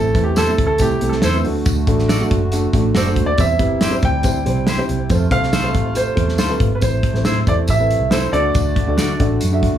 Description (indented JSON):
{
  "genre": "uptempo 1960s-style soul",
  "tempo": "139 BPM",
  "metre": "4/4",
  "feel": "straight",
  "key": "A minor",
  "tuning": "A4 = 439 Hz",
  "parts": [
    { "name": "clear baby grand piano", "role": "melody", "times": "0.0-9.2 s", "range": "G4 to G5", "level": "-21 LUFS", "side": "right 1 dB", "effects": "none" },
    { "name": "dark upright piano", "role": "accompaniment", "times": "0.0-9.7 s", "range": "A3 to E5", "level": "-23 LUFS", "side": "left 2 dB", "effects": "none" },
    { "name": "hand-pumped harmonium", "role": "sustained chords", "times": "0.0-9.8 s", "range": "C3 to F#4", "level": "-28 LUFS", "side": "right 5 dB", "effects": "none" },
    { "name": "vintage muted fingered electric bass", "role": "bass", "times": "0.0-9.8 s", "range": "F#1 to D3", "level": "-20 LUFS", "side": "equal", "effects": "none" },
    { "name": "natural country drum kit", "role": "drums", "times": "0.1-9.7 s", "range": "hi-hat, kick drum, snare drum", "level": "-20 LUFS", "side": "equal", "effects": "none" },
    { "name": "clean electric guitar", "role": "stabs", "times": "0.4-9.1 s", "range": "E4 to D5", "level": "-25 LUFS", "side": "right 2 dB", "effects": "none" },
    { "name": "tambourine", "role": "percussion", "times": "0.4-9.5 s", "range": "none", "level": "-34 LUFS", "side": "right 4 dB", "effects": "none" }
  ],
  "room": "little or no reverb",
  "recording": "small room ambience",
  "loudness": "-14 LUFS",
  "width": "side -10 dB against mid",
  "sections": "0.0-6.8 A section; 6.8-9.8 B section",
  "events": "grand piano solo 0.0-6.8",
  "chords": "0.0 Am; 1.4 D; 3.4 C; 5.1 F; 6.8 Am; 8.3 D"
}